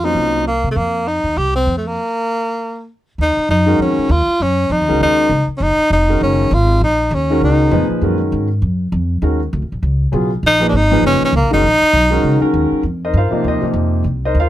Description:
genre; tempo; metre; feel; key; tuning
modal jazz; 199 BPM; 4/4; swing 60% on 8ths; Eb minor from 3.2 s; A4 = 435 Hz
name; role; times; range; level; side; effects
clear tenor saxophone; melody; 0.0-7.9, 10.5-12.5 s; A3 to G4; -15 LUFS; equal; none
warm concert grand piano; accompaniment; 0.0-0.4, 3.7-14.5 s; Bb2 to F5; -17 LUFS; equal; none
upright bass; bass; 0.0-14.5 s; F1 to C3; -17 LUFS; equal; none
room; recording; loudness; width
little or no reverb; close, detailed microphones; -13 LUFS; side -13 dB against mid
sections
0.0-3.2 A section; 3.2-12.8 B section; 12.8-14.5 C section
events
stop 2.0-3.2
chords
0.0 F7sus4; 2.0 N.C.; 3.2 Ebm9; 12.8 F9sus4

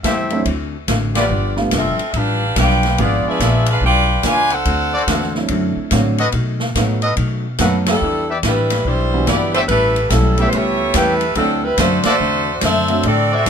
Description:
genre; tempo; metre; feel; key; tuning
jazz, big band swing; 143 BPM; 4/4; swing 64% on 8ths; D mixolydian; A4 = 438 Hz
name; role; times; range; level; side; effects
vintage hollow-body jazz guitar; accompaniment; 0.0-13.5 s; G2 to G4; -25 LUFS; left 5 dB; none
warm trumpet section; stabs; 0.0-13.5 s; F4 to G5; -20 LUFS; left 1 dB; none
upright bass; bass; 0.0-13.5 s; F1 to B2; -20 LUFS; equal; none
swinging big-band drum kit; drums; 0.0-13.5 s; hi-hat, kick drum, ride cymbal, snare drum; -22 LUFS; equal; none
warm grand piano; accompaniment; 0.3-13.0 s; E3 to A4; -22 LUFS; right 3 dB; none
bright saxophone section; melody; 1.2-5.4, 7.9-13.5 s; F#3 to G#5; -17 LUFS; right 1 dB; none
room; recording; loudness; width
moderate booth ambience, RT60 0.2 s; minimal, uncompressed stereo recording; -14 LUFS; side -7 dB against mid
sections
0.0-13.5 A section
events
band accent 1.1, 7.8, 12.0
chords
0.5 D7; 1.3 G7; 3.0 G#dim7; 4.7 D7; 6.3 B7; 8.0 Em7; 9.7 A7; 11.4 D7

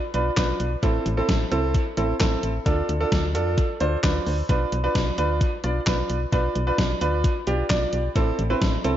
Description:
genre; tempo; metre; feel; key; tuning
synth-pop; 131 BPM; 4/4; straight; unclear; A4 = 444 Hz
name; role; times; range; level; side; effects
warm grand piano; accompaniment; 0.1-9.0 s; C4 to D5; -24 LUFS; right 2 dB; dub echo
solid FM bass; bass; 0.1-9.0 s; A1 to F2; -26 LUFS; equal; none
gated 80s digital drum machine; drums; 0.1-9.0 s; handclaps, hi-hat, kick drum, snare drum; -25 LUFS; equal; gated reverb, gated reverb snare, overdrive, dub echo
room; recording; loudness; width
light reverb; echo-heavy mix, nothing above 7.5 kHz; -21 LUFS; side -11 dB against mid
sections
0.0-9.0 A section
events
none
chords
0.0 Bdim; 0.8 Am; 2.7 Dm; 4.5 Bdim; 8.2 Am

